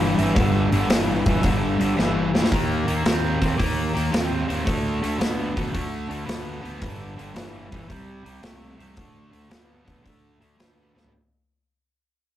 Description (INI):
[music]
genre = blues rock power trio and southern rock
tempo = 112 BPM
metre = 4/4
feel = swing 67% on 8ths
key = unclear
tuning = A4 = 440 Hz
[part]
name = cranked stack guitar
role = riff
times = 0.0-11.1 s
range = G2 to C4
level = -25 LUFS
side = equal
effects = overdrive
[part]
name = fuzz fingered electric bass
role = bass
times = 0.0-11.1 s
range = G1 to Eb2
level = -27 LUFS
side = equal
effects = overdrive
[part]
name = big rock drum kit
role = drums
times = 0.2-11.1 s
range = hi-hat, kick drum, snare drum, toms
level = -25 LUFS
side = equal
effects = none
[sound]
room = moderate small room reverb, RT60 0.5 s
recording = rough rehearsal-room recording, tube saturation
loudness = -20 LUFS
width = side -12 dB against mid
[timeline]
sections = 0.0-11.1 A section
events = fade-out 0.0-11.1; drum fill 2.0-2.5, 10.9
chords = 0.0 G5; 2.5 Eb5; 4.7 D5; 6.8 G5; 7.9 C5; 9.0 D5